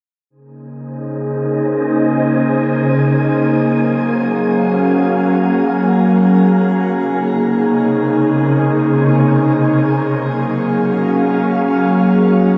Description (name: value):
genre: hip hop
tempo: free time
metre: none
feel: none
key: Bb minor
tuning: A4 = 440 Hz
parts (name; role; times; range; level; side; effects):
- glassy FM pad; sustained chords; 0.8-12.6 s; C3 to F5; -15 LUFS; equal; ensemble chorus, built-in reverb, low-pass filter
- wind-like tuned noise texture; texture; 1.0-12.6 s; Db4 to Ab5; -26 LUFS; equal; built-in reverb
room: moderate shimmer reverb, RT60 6.1 s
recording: dark, warm production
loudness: -15 LUFS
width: mono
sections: 0.3-12.6 A section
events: filter sweep on ambient pad 0.3-12.6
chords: 0.3 Bbm11; 3.6 Gbmaj9; 6.8 Bbm11; 10.1 Gbmaj9